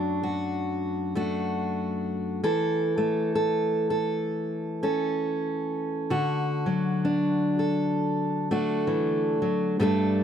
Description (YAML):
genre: folk, solo fingerstyle acoustic guitar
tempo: 65 BPM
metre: 4/4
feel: swing 60% on 8ths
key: D major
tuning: A4 = 440 Hz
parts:
  - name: fingerpicked steel-string acoustic guitar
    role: solo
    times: 0.0-10.2 s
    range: F#2 to A4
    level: -24 LUFS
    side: equal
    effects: none
room: light reverb, small room reverb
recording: dry, close 1970s-style studio recording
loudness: -24 LUFS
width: side -8 dB against mid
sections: 0.0-10.2 A section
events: none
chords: 0.0 D/F#; 2.4 A/E; 6.1 D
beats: 0.59 1.51 | 2.43 3.35 4.28 5.20 | 6.12 7.04 7.96 8.88 | 9.80